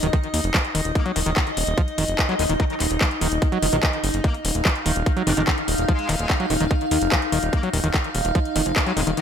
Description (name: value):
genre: psychedelic trance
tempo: 146 BPM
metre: 4/4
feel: straight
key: Eb minor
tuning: A4 = 440 Hz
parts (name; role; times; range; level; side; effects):
- evolving wavetable pad; sustained chords; 0.0-9.2 s; Eb4 to F5; -26 LUFS; equal; phaser, built-in reverb, sidechain pumping
- screaming distorted acid line; riff; 0.0-9.2 s; Eb3 to Gb3; -27 LUFS; moving between left 4 dB and right 3 dB; distortion, chorus, auto-pan, sidechain pumping, ping-pong delay
- fat analog bass; bass; 0.0-9.1 s; Eb1 to Eb2; -24 LUFS; equal; none
- garage drum kit; drums; 0.0-9.2 s; handclaps, hi-hat; -25 LUFS; left 1 dB; none
- electronic kick drum; drums; 0.1-8.8 s; none; -21 LUFS; equal; none
- metallic wobble bass; second line; 1.0-9.2 s; Gb3 to D4; -33 LUFS; left 4 dB; distortion, chorus, sidechain pumping, high-pass filter, tape echo
room: light reverb, digital ambience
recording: none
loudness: -19 LUFS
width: side -8 dB against mid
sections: 0.0-9.2 A section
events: none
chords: 0.0 Eb5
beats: 0.13 0.54 | 0.95 1.36 1.78 2.19 | 2.60 3.01 3.42 3.83 | 4.24 4.65 5.06 5.47 | 5.88 6.30 6.71 7.12 | 7.53 7.94 8.35 8.76 | 9.17